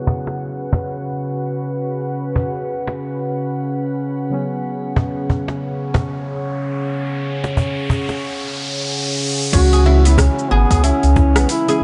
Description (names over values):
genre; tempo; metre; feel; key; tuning
organic downtempo; 92 BPM; 4/4; swing 60% on 16ths; unclear; A4 = 441 Hz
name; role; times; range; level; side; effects
muted felt-like synth keys; accompaniment; 0.0-11.8 s; C#3 to E4; -30 LUFS; equal; chorus, sidechain pumping, tape echo, shimmer reverb
warm analog pad; sustained chords; 0.0-11.8 s; C#3 to G#5; -26 LUFS; equal; chorus, sidechain pumping, shimmer reverb
cajon; percussion; 0.1-11.3 s; none; -22 LUFS; equal; none
riser; sound effects; 6.4-9.5 s; none; -28 LUFS; equal; none
mellow duduk; melody; 9.5-11.8 s; B3 to F#4; -21 LUFS; equal; tape echo, shimmer reverb
oud; arpeggios; 9.5-11.8 s; B3 to G#4; -25 LUFS; equal; tape echo, shimmer reverb
round analog bass; bass; 9.5-11.8 s; G#1 to C#2; -16 LUFS; equal; sidechain pumping
deep house drum kit; drums; 9.5-11.8 s; crash cymbal, hi-hat, rim click, shaker; -25 LUFS; equal; overdrive
electronic kick drum; drums; 9.5-11.3 s; none; -20 LUFS; equal; none
room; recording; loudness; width
moderate lush hall reverb, RT60 2.6 s; low-pass filter, nothing above 10.8 kHz; -19 LUFS; mono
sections
0.0-9.5 A section; 9.5-11.8 B section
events
filter sweep on analog synth pad 0.0-9.5; filter sweep 0.0-9.5; riser 6.4-9.5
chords
0.0 Bsus2/C#; 9.5 C#m